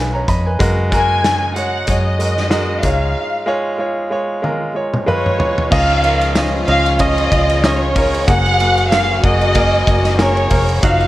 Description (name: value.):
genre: piano-driven pop.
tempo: 94 BPM.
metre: 4/4.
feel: swing 56% on 16ths.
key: unclear.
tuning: A4 = 438 Hz.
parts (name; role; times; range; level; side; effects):
bright upright piano; accompaniment; 0.0-11.1 s; Ab2 to Cb6; -19 LUFS; right 1 dB; none.
vintage muted fingered electric bass; bass; 0.0-11.1 s; F1 to Gb2; -18 LUFS; equal; none.
loose indie drum kit; drums; 0.3-11.1 s; crash cymbal, hi-hat, kick drum, ride cymbal, snare drum, toms; -19 LUFS; equal; none.
dark studio violin section; melody; 0.9-11.1 s; Db5 to Ab5; -17 LUFS; equal; none.
dark French horn section; second line; 5.7-11.1 s; F3 to Gb4; -25 LUFS; left 2 dB; none.
rich studio string section; sustained chords; 5.7-11.1 s; Db3 to Gb4; -27 LUFS; left 1 dB; none.
room: light reverb, studio ambience.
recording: worn, warbling old tape, cassette tape, warbly pitch drift.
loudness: -13 LUFS.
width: side -15 dB against mid.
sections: 0.0-5.7 A section; 5.7-11.1 B section.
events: break 3.2-5.7; drum fill 4.4-5.7.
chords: 0.0 Fdim; 0.6 Gbadd9; 2.8 Db; 5.7 Dbadd9; 8.3 Gbadd9.